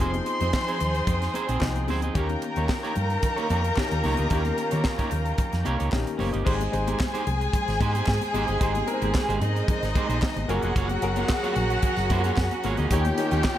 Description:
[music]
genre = disco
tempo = 112 BPM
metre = 4/4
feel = straight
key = Ab major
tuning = A4 = 439 Hz
[part]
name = warm studio violin section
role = second line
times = 0.0-13.6 s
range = Eb4 to C6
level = -30 LUFS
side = left 2 dB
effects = none
[part]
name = clear grand piano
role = accompaniment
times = 0.0-13.6 s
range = Eb3 to F5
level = -33 LUFS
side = left 4 dB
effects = none
[part]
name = electric guitar at the edge of break-up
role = accompaniment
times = 0.0-13.5 s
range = Ab3 to Eb5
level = -32 LUFS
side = right 5 dB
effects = none
[part]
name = dark studio string section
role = sustained chords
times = 0.0-13.6 s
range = Eb3 to G5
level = -32 LUFS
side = right 2 dB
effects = none
[part]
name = hollow-body short-scale fingered electric bass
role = bass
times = 0.0-13.4 s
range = F1 to Eb3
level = -27 LUFS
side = equal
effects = none
[part]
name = tight funk drum kit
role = drums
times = 0.0-13.6 s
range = crash cymbal, hi-hat, kick drum, snare drum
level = -27 LUFS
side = equal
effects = none
[part]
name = congas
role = percussion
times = 0.0-13.6 s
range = none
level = -36 LUFS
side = left 6 dB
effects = none
[part]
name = group handclap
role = percussion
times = 0.5-13.6 s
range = none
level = -38 LUFS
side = left 2 dB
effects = none
[sound]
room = light reverb, small room ambience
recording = none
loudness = -22 LUFS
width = side -12 dB against mid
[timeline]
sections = 0.0-6.5 A section; 6.5-13.6 B section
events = grand piano fill 5.4-6.5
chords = 0.0 Fm7; 2.2 Eb7; 6.5 Abmaj7; 10.5 Gbmaj9; 12.9 Eb7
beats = | 0.00 0.54 1.08 1.62 | 2.16 2.69 3.23 3.77 | 4.31 4.85 5.39 5.92 | 6.46 7.00 7.54 8.07 | 8.61 9.15 9.69 10.22 | 10.76 11.30 11.84 12.37 | 12.91 13.45

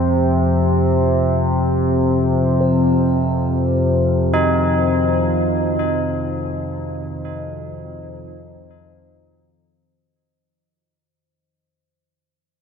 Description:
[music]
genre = dark ambient drone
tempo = free time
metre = none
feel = none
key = unclear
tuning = A4 = 440 Hz
[part]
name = carillon bells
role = arpeggios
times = 0.0-10.1 s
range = F3 to Eb4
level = -24 LUFS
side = equal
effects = ping-pong delay
[part]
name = analog drone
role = drone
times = 0.0-10.4 s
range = F2 to C3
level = -17 LUFS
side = equal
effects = chorus
[part]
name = bronze singing bowl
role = texture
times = 2.6-10.4 s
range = C5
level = -27 LUFS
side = left 4 dB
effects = none
[sound]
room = wet huge ambient reverb, RT60 7.7 s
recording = dreamy mix soaked in reverb, cassette tape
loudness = -16 LUFS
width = side -6 dB against mid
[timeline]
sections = 0.0-10.4 A section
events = fade-in on church bells 0.0-10.4; fade-out 5.2-10.4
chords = 0.0 F5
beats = free time

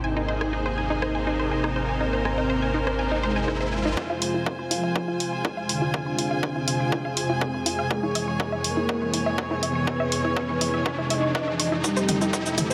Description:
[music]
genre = melodic techno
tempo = 122 BPM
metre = 4/4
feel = straight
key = unclear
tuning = A4 = 439 Hz
[part]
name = mellow synth brass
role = melody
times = 0.0-12.7 s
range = C3 to Eb5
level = -32 LUFS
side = equal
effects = chorus, dub echo
[part]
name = lush unison pad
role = sustained chords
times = 0.0-12.7 s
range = C3 to Bb4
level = -34 LUFS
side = equal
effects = chorus, vintage 12-bit sampler grit, sidechain pumping
[part]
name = unison pluck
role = arpeggios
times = 0.0-12.7 s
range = Eb4 to Db6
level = -33 LUFS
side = equal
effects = vintage 12-bit sampler grit, sidechain pumping, analog delay
[part]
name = dark detuned saw bass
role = bass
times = 0.0-12.7 s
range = F1 to Db2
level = -36 LUFS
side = equal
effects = tube saturation, sidechain pumping, high-pass filter
[part]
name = bowed-like drone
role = drone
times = 0.0-12.7 s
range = F2 to C3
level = -37 LUFS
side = equal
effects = built-in reverb, sidechain pumping
[part]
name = riser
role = sound effects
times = 2.6-12.7 s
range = none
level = -37 LUFS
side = equal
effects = none
[part]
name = rich studio string section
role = texture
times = 0.0-12.7 s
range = Eb4 to Ab5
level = -33 LUFS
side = equal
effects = sidechain pumping
[part]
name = punchy analog drum machine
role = drums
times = 0.4-12.7 s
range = hi-hat, rim click, shaker, toms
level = -30 LUFS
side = equal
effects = sidechain pumping on hats, sidechain pumping on perc, sidechain pumping on toms
[part]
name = electronic kick drum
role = drums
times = 4.0-12.4 s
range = none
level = -32 LUFS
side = equal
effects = high-pass filter on kick
[sound]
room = moderate spring reverb, RT60 1.7 s, digital ambience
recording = echo-heavy mix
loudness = -25 LUFS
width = mono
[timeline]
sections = 0.0-4.0 A section; 4.0-12.7 B section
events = filter sweep on analog polysynth 0.0-4.0, 4.0-12.7; riser 2.6-4.0, 4.0-12.7; build-up 4.0-12.7; filter sweep on synth arpeggio sound 4.0-12.7; drum fill 11.8-12.7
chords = 0.0 Abadd9; 4.0 Fm; 7.9 Dbm; 11.8 Am7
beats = | 0.04 0.53 1.02 1.51 | 2.00 2.50 2.99 3.48 | 3.97 4.46 4.96 5.45 | 5.94 6.43 6.92 7.42 | 7.91 8.40 8.89 9.38 | 9.87 10.37 10.86 11.35 | 11.84 12.33

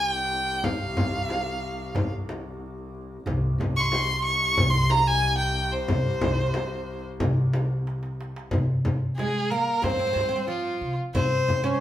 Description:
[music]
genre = Arabic maqam ensemble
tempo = 92 BPM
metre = 4/4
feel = straight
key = unclear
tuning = A4 = 440 Hz
[part]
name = rich violin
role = melody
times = 0.0-11.8 s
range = F4 to Db6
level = -25 LUFS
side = equal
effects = none
[part]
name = clear double bass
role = drone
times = 0.0-8.6 s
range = C2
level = -35 LUFS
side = left 1 dB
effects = none
[part]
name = darbuka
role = percussion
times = 0.3-11.6 s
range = none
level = -33 LUFS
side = equal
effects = none
[part]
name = frame drum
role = percussion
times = 0.6-11.6 s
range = none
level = -29 LUFS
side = left 1 dB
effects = none
[part]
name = upright bass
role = bass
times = 3.3-11.8 s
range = C2 to C3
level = -27 LUFS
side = equal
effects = none
[part]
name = oud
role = second line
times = 9.2-11.8 s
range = F3 to Db4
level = -29 LUFS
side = right 3 dB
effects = none
[sound]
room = wet large studio reverb, RT60 0.9 s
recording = band playing live in one room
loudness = -23 LUFS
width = side -12 dB against mid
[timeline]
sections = 0.0-8.5 A section; 8.5-11.8 B section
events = drum fill 7.9-8.5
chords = none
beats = | 0.65 1.30 1.96 2.61 | 3.27 3.92 4.58 5.24 | 5.89 6.55 7.20 7.86 | 8.52 9.18 9.83 10.49 | 11.15

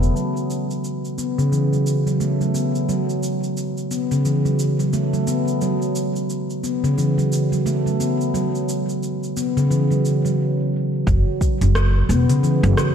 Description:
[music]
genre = organic downtempo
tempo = 88 BPM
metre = 4/4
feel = swing 60% on 16ths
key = F# minor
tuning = A4 = 444 Hz
[part]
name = upright bass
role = bass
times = 0.0-0.1, 11.1-12.7 s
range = E1 to F#1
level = -17 LUFS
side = equal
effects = none
[part]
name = organic electronic drum kit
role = drums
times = 0.0-12.9 s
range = hi-hat, rim click, shaker, toms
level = -29 LUFS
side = equal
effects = none
[part]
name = handpan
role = arpeggios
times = 0.2-12.9 s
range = C#3 to B3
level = -19 LUFS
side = equal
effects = low-pass filter, ping-pong delay
[part]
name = electronic kick drum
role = drums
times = 11.1-11.6 s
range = none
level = -20 LUFS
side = equal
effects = none
[sound]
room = moderate concert hall reverb, RT60 2.1 s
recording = dark, warm production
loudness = -18 LUFS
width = side -8 dB against mid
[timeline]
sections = 0.2-11.1 A section; 11.1-12.9 B section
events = filter sweep on handpan 0.2-11.1; stop 10.4-11.1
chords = 0.2 N.C.; 11.1 F#7(no3)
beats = | 0.16 0.84 1.52 2.21 | 2.89 3.57 4.25 4.93 | 5.62 6.30 6.98 7.66 | 8.34 9.02 9.71 10.39 | 11.07 11.75 12.43

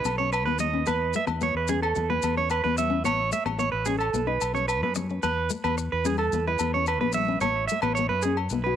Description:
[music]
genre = highlife guitar band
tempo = 110 BPM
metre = 4/4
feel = straight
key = E major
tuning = A4 = 438 Hz
[part]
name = nylon-string guitar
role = accompaniment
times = 0.0-8.8 s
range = A3 to F#4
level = -31 LUFS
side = left 8 dB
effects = cassette tape
[part]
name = clean electric guitar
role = arpeggios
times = 0.0-8.8 s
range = G#4 to E5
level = -26 LUFS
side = right 6 dB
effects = cassette tape, tape echo
[part]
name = fingered electric bass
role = bass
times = 0.0-8.8 s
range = A1 to F#2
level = -30 LUFS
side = left 1 dB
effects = none
[part]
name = maracas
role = percussion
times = 0.0-8.6 s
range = none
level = -37 LUFS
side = left 10 dB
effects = none
[part]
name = agogo bells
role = percussion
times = 0.1-8.5 s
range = none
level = -34 LUFS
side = left 8 dB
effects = none
[part]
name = congas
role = percussion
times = 0.1-8.0 s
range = none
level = -33 LUFS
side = left 9 dB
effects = none
[sound]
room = light reverb, small room ambience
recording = home recording on cassette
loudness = -23 LUFS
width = side -9 dB against mid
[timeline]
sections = 0.0-8.8 A section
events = none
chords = 0.0 B; 0.9 E5; 3.1 A; 4.1 B; 5.2 E5; 7.4 A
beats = 0.33 | 0.87 1.42 1.96 2.51 | 3.05 3.60 4.14 4.69 | 5.24 5.78 6.33 6.87 | 7.41 7.96 8.50

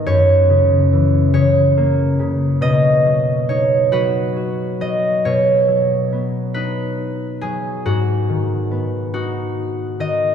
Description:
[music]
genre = children's music, lullaby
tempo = 46 BPM (dotted quarters)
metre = 6/8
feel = straight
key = B major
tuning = A4 = 440 Hz
[part]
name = concert harp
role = melody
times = 0.0-10.3 s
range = F#4 to D#5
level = -18 LUFS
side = right 2 dB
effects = none
[part]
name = concert harp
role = accompaniment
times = 0.0-10.3 s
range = F#2 to F#4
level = -17 LUFS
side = left 2 dB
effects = none
[sound]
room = wet church reverb, RT60 3.8 s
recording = recorded in a church or concert hall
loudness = -15 LUFS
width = side -8 dB against mid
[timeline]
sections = 0.0-5.2 A section; 5.2-10.3 B section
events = none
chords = 0.1 F#7; 2.6 B; 7.8 G#m7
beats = | 0.06 1.34 | 2.63 3.93 | 5.24 6.55 | 7.85 9.13

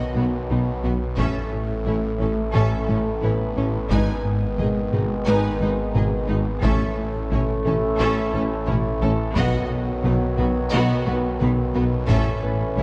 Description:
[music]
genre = cinematic, hybrid orchestral and electronic film score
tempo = 88 BPM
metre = 4/4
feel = straight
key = unclear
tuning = A4 = 438 Hz
[part]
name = warm symphonic violin section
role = melody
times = 0.0-12.8 s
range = F#4 to G#5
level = -39 LUFS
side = equal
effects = none
[part]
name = rich symphonic violin section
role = second line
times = 0.0-12.8 s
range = B3 to B4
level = -34 LUFS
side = equal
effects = none
[part]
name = warm symphonic viola section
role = accompaniment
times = 0.0-12.8 s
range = B3 to D#4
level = -34 LUFS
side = equal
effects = none
[part]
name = dark French horn section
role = sustained chords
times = 0.0-12.8 s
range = B3 to B4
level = -33 LUFS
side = equal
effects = none
[part]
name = warm trombone section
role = sustained chords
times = 0.0-12.8 s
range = D#3 to C#4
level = -32 LUFS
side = equal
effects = none
[part]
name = smooth gliding synth bass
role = riff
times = 0.0-12.8 s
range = G#2 to B3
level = -29 LUFS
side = equal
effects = none
[part]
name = snarling distorted saw bass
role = bass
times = 0.0-12.8 s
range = G#1 to B1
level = -31 LUFS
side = equal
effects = distortion
[part]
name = impact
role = sound effects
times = 0.0-1.2 s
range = none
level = barely audible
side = none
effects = none
[part]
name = bright concert grand piano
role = texture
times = 0.0-12.8 s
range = B3 to C#5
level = -38 LUFS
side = equal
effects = none
[part]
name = mellow tuba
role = bass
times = 0.2-12.8 s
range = G#1 to B1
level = -33 LUFS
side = equal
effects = none
[part]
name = rich symphonic cello section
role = bass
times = 0.2-12.8 s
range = G#2 to B2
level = -32 LUFS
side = equal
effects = none
[part]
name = warm symphonic double bass section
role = bass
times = 0.2-12.8 s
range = G#1 to B1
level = -32 LUFS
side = equal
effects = none
[part]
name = taiko ensemble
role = drums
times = 1.2-12.8 s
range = none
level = -30 LUFS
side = equal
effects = none
[sound]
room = moderate concert hall reverb, RT60 2.4 s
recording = dark, warm production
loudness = -22 LUFS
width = mono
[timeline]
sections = 0.0-12.8 A section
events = impact 0.0-1.2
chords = 0.0 B; 1.2 A; 3.9 G#m; 6.6 A; 9.4 B; 12.1 A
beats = 0.50 | 1.18 1.86 2.54 3.23 | 3.91 4.59 5.27 5.95 | 6.63 7.32 8.00 8.68 | 9.36 10.04 10.73 11.41 | 12.09 12.77

